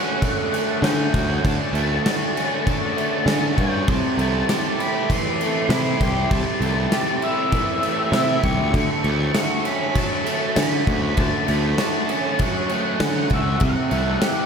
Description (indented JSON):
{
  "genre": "rock, shoegaze and dream pop",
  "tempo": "98 BPM",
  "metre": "4/4",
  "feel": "straight",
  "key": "D major",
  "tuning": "A4 = 439 Hz",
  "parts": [
    { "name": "octave-fuzz lead guitar", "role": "melody", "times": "0.0-14.5 s", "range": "E5 to C#6", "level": "-27 LUFS", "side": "left 2 dB", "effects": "distortion, ping-pong delay" },
    { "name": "overdriven electric guitar", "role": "riff", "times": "0.0-14.5 s", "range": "C3 to G4", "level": "-23 LUFS", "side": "right 1 dB", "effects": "lush chorus" },
    { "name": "big rock drum kit", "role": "drums", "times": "0.2-14.4 s", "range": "crash cymbal, kick drum, snare drum", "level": "-24 LUFS", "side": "equal", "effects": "none" },
    { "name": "fuzz picked electric bass", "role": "bass", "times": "0.8-14.2 s", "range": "C2 to D3", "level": "-23 LUFS", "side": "equal", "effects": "overdrive" }
  ],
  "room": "wet cathedral reverb, RT60 6.9 s",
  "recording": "dreamy mix soaked in reverb",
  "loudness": "-18 LUFS",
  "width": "side -6 dB against mid",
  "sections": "0.0-14.5 A section",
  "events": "none",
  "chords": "0.0 Dmaj7; 3.9 C6; 8.7 Dmaj7; 13.6 C5"
}